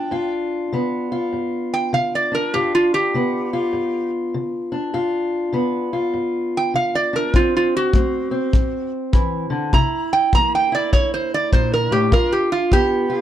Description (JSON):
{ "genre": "acoustic country blues, solo or duo", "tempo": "100 BPM", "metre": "4/4", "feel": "swing 63% on 8ths", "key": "G mixolydian", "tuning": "A4 = 440 Hz", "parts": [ { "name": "metal-body resonator slide guitar", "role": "melody", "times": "0.0-13.2 s", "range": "F4 to Bb5", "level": "-19 LUFS", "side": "right 2 dB", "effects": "none" }, { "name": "fingerpicked steel-string acoustic guitar", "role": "accompaniment", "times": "0.0-13.2 s", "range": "G2 to F4", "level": "-22 LUFS", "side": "left 1 dB", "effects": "none" }, { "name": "kick drum", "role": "drums", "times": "7.3-12.9 s", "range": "none", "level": "-17 LUFS", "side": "left 1 dB", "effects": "none" } ], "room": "light reverb", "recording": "dark, warm production", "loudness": "-17 LUFS", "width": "side -11 dB against mid", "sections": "0.0-13.2 A section", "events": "resonator guitar played with a steel bar solo 0.0-13.2", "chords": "0.0 G7; 7.3 D7; 9.7 C7; 12.1 G7" }